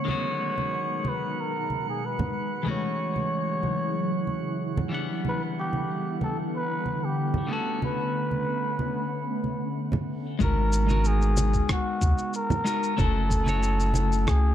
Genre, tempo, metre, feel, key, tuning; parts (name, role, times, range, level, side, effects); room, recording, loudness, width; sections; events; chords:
sunset chillout; 93 BPM; 4/4; straight; G# phrygian; A4 = 437 Hz
trumpet with cup mute; melody; 0.0-14.5 s; F#4 to C#5; -30 LUFS; left 1 dB; vintage 12-bit sampler grit, digital delay
clean electric guitar; accompaniment; 0.0-14.5 s; D3 to F#5; -31 LUFS; moving between left 7 dB and right 4 dB; auto-pan, digital delay
ethereal airy pad; sustained chords; 0.0-10.4 s; B2 to A#5; -32 LUFS; right 1 dB; ensemble chorus, built-in reverb, vintage 12-bit sampler grit
drifting glass-harmonics texture; texture; 0.0-10.4 s; F#5; -43 LUFS; right 7 dB; chorus, built-in reverb
congas; percussion; 0.1-14.1 s; -31 LUFS; right 2 dB
round analog bass; bass; 10.4-14.5 s; F#1 to D#2; -23 LUFS; equal; tube saturation
electronic kick drum; drums; 10.4-14.4 s; -27 LUFS; equal
electronic shaker and rim click; drums; 10.4-14.4 s; -34 LUFS; left 1 dB; low-pass filter on perc, low-pass filter on snare
light reverb; dark, warm production; -24 LUFS; side -11 dB against mid
0.0-10.4 A section; 10.4-14.5 B section
filter sweep on ambient pad 0.0-10.4
0.1 G#m9; 2.7 F#m9; 4.9 Em9; 7.5 Bm9; 10.4 G#m9; 13.0 F#m7